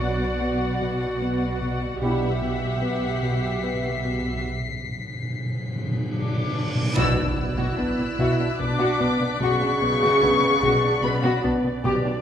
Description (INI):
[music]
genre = cinematic, suspense film score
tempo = 74 BPM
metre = 3/4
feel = straight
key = B minor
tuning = A4 = 442 Hz
[part]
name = muted chamber violin section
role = melody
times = 0.0-11.4 s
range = F#5 to E6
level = -28 LUFS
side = left 4 dB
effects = none
[part]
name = muted studio violin section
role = second line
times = 0.0-12.2 s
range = B3 to E5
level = -29 LUFS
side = left 1 dB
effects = none
[part]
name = muted studio viola section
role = accompaniment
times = 0.0-11.4 s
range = C#3 to G4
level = -27 LUFS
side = right 2 dB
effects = none
[part]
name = smooth synth bass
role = riff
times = 0.0-12.1 s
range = B2 to B3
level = -27 LUFS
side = left 1 dB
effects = none
[part]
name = muted chamber cello section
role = bass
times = 0.0-12.1 s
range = B2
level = -31 LUFS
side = right 2 dB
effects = none
[part]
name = muted chamber double bass section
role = bass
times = 0.0-11.9 s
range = B1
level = -32 LUFS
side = right 2 dB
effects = none
[part]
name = clear baby grand piano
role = texture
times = 0.0-2.0, 8.2-12.2 s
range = C#4 to D6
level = -36 LUFS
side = left 2 dB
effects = none
[part]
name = mellow French horn section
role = sustained chords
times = 2.0-2.3 s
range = B3 to E4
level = -34 LUFS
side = equal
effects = none
[part]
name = warm trombone section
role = sustained chords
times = 2.0-2.3 s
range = G2 to G3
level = -31 LUFS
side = right 2 dB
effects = none
[part]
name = timpani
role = percussion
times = 2.0-8.2, 11.8-12.2 s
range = B2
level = -29 LUFS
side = equal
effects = none
[part]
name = muted chamber violin section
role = texture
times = 2.0-11.4 s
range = F#6 to C7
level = -35 LUFS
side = left 5 dB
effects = none
[part]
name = reverse cymbal and impact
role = sound effects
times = 6.1-9.4 s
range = none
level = -34 LUFS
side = equal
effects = none
[sound]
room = wet recital hall reverb, RT60 1.4 s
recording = recorded in a church or concert hall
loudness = -21 LUFS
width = side -9 dB against mid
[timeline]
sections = 0.0-7.0 A section; 7.0-12.2 B section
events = timpani fill 2.0-7.0; break 4.5-7.0; reverse cymbal 6.1-7.0; band accent 7.0-7.8; impact 7.0-9.4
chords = 0.0 Bm; 2.0 Emadd9/B; 7.0 Bm